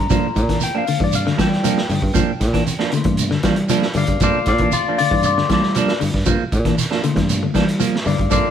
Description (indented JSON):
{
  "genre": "afrobeat",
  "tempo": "117 BPM",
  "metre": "4/4",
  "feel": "straight",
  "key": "G dorian",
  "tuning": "A4 = 438 Hz",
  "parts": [
    { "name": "barky tine electric piano", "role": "accompaniment", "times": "0.0-8.5 s", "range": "A3 to Bb5", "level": "-22 LUFS", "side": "left 5 dB", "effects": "overdrive, phaser" },
    { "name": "clean electric guitar", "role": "arpeggios", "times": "0.0-8.5 s", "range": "D3 to F3", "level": "-23 LUFS", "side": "left 5 dB", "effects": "none" },
    { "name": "fingered electric bass", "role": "bass", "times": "0.0-8.5 s", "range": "G2 to G3", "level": "-21 LUFS", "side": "right 1 dB", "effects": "none" },
    { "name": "semi-hollow electric guitar", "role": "stabs", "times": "0.1-8.5 s", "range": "F3 to D4", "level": "-23 LUFS", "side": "right 7 dB", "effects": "none" },
    { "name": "vintage drum kit", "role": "drums", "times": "0.1-8.4 s", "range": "hi-hat, kick drum, snare drum", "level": "-23 LUFS", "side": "right 1 dB", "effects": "none" },
    { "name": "shekere", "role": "percussion", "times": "0.1-8.4 s", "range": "none", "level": "-26 LUFS", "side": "right 6 dB", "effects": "none" }
  ],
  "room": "moderate stone room reverb, RT60 1.3 s",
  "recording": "band playing live in one room",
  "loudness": "-15 LUFS",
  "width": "side -9 dB against mid",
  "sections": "0.0-8.5 A section",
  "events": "tine electric piano solo 0.0-8.5",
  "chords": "0.0 Gm7"
}